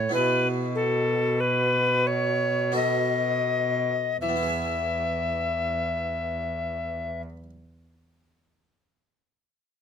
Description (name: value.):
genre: classical, baroque-style sonata movement with continuo.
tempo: 40-49 BPM.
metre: 3/4.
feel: straight.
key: E major.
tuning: A4 = 444 Hz.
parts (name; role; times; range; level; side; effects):
alto recorder; melody; 0.0-7.2 s; A4 to E5; -25 LUFS; left 2 dB; none.
harpsichord; accompaniment; 0.0-7.5 s; B2 to E5; -33 LUFS; right 3 dB; none.
rich cello; bass; 0.0-7.2 s; E2 to B2; -30 LUFS; right 1 dB; none.
room: little or no reverb.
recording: close, detailed microphones.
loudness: -23 LUFS.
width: side -7 dB against mid.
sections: 0.0-4.2 A section; 4.2-8.6 B section.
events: slowing down 0.0-4.2.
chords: 0.1 E/B; 2.7 B7; 4.2 E.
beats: | 0.13 1.40 2.74 | 4.19 5.68 7.16.